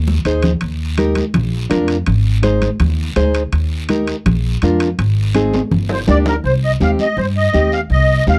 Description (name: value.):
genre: latin, cumbia.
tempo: 165 BPM.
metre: 4/4.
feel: straight.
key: C minor.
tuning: A4 = 441 Hz.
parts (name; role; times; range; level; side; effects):
upright bass; bass; 0.0-8.4 s; G1 to G2; -19 LUFS; equal; none.
congas; percussion; 0.1-8.4 s; none; -23 LUFS; equal; none.
nylon-string guitar; accompaniment; 0.3-8.4 s; Bb3 to C5; -19 LUFS; equal; none.
guiro; percussion; 0.3-8.4 s; none; -36 LUFS; equal; none.
timbales; percussion; 0.3-6.3 s; none; -28 LUFS; equal; none.
musette accordion; melody; 5.9-8.4 s; Bb4 to F5; -20 LUFS; equal; none.
room: light reverb.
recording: dry, close 1970s-style studio recording.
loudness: -16 LUFS.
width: mono.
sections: 0.0-6.4 A section; 6.4-8.4 B section.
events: drum fill 0.1-0.6, 5.5-6.4.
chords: 0.0 Ab; 0.6 Eb; 1.4 Bb; 2.1 Ab; 3.5 Eb; 4.3 Bb; 5.0 Ab; 5.7 Gm; 6.4 Cm.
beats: 0.26 | 0.62 0.99 1.35 1.72 | 2.08 2.44 2.81 3.17 | 3.54 3.90 4.26 4.63 | 4.99 5.36 5.72 6.08 | 6.45 6.81 7.18 7.54 | 7.91 8.27.